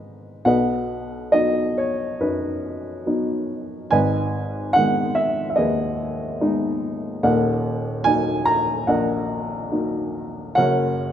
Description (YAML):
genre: classical, lyrical solo piano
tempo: 71 BPM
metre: 4/4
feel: rubato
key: B major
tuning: A4 = 436 Hz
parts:
  - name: dark upright piano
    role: solo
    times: 0.0-11.1 s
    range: D#1 to A#5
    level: -20 LUFS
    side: equal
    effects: none
room: moderate recital hall reverb, RT60 1.7 s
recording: minimal, uncompressed stereo recording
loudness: -19 LUFS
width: side -10 dB against mid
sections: 0.5-11.1 A section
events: none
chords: 0.5 B; 3.9 G#m; 7.2 D#m; 10.6 F#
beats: | 0.45 1.33 2.20 3.06 | 3.91 4.75 5.58 6.40 | 7.22 8.06 8.89 9.72 | 10.58